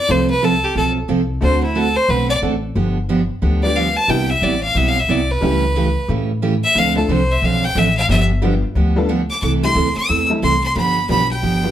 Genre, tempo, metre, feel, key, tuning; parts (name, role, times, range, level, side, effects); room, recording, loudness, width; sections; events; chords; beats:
country; 180 BPM; 4/4; swing 63% on 8ths; C major; A4 = 436 Hz
bright fiddle; melody; 0.0-11.7 s; E4 to E6; -18 LUFS; equal
picked steel-string acoustic guitar; accompaniment; 0.1-11.6 s; C3 to A4; -20 LUFS; right 4 dB
tack piano; accompaniment; 0.1-1.6, 3.6-11.7 s; F3 to A4; -23 LUFS; left 2 dB
upright bass; bass; 0.1-11.7 s; G1 to A2; -20 LUFS; left 1 dB
moderate studio reverb, RT60 0.7 s; band playing live in one room; -14 LUFS; side -11 dB against mid
0.0-9.4 A section; 9.4-11.7 B section
fiddle solo 0.0-9.4
0.1 F/C; 1.4 D7; 2.8 G7; 4.1 Cmaj7; 5.4 A7/C#; 6.8 Dm7; 8.1 G7; 9.4 C6; 10.8 G7
| 0.09 0.42 0.75 1.09 | 1.42 1.75 2.09 2.42 | 2.75 3.09 3.42 3.75 | 4.09 4.42 4.75 5.09 | 5.42 5.75 6.09 6.42 | 6.75 7.09 7.42 7.75 | 8.09 8.42 8.75 9.09 | 9.42 9.75 10.09 10.42 | 10.76 11.09 11.43